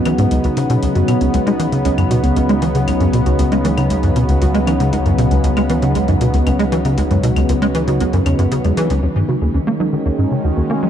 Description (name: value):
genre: ambient, sequencer-driven space music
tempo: 117 BPM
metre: 4/4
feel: straight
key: unclear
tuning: A4 = 439 Hz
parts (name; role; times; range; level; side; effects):
- sweeping resonant pad; sustained chords; 0.0-10.9 s; C#3 to F#4; -18 LUFS; left 1 dB; chorus, shimmer reverb
- soft round pluck; arpeggios; 0.0-10.9 s; G#3 to G#4; -23 LUFS; moving between right 1 dB and right 7 dB; chorus, auto-pan, analog delay, shimmer reverb
- warm sub bass; bass; 0.0-9.0 s; C#2; -23 LUFS; equal; none
- tight sequencer bass; riff; 0.1-10.9 s; C#2 to A#3; -16 LUFS; equal; ensemble chorus, analog delay
- electronic hi-hat and claves; percussion; 0.1-9.0 s; none; -32 LUFS; left 3 dB; overdrive
room: light reverb, digital ambience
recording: none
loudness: -13 LUFS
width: side -9 dB against mid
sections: 0.0-9.0 A section; 9.0-10.9 B section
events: filter sweep on analog synth bass 0.0-9.0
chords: 0.0 C#7(no3); 9.0 D#m